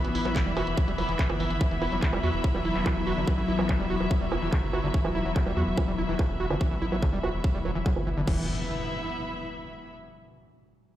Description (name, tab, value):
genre	psychedelic trance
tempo	144 BPM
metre	4/4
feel	straight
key	unclear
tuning	A4 = 440 Hz
part	evolving wavetable pad	sustained chords	0.0-8.3 s	E3 to B3	-33 LUFS	left 2 dB	chorus, built-in reverb, sidechain pumping
part	screaming distorted acid line	riff	0.0-8.5 s	D3 to F#4	-33 LUFS	right 1 dB	distortion, chorus, auto-pan, sidechain pumping, tape echo
part	round analog bass	bass	0.0-8.5 s	E1 to E2	-31 LUFS	equal	none
part	garage drum kit	drums	0.0-8.4 s	bongos, crash cymbal, handclaps, hi-hat	-36 LUFS	right 3 dB	low-pass filter on hats, low-pass filter on perc, low-pass filter on snare, low-pass filter on cymbals, low-pass filter on room
part	muted studio string section	texture	0.0-9.9 s	B3 to B5	-33 LUFS	equal	sidechain pumping
part	electronic kick drum	drums	0.4-8.4 s	none	-26 LUFS	equal	none
part	impact	sound effects	8.4-9.9 s	none	-37 LUFS	equal	none
room	light reverb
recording	played on a big sound system in a bare room, stone room reverb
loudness	-24 LUFS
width	side -13 dB against mid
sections	0.0-8.3 A section; 8.3-9.9 B section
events	filter sweep on drum 0.0-8.3; filter sweep on analog synth bass 0.0-8.3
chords	0.0 E5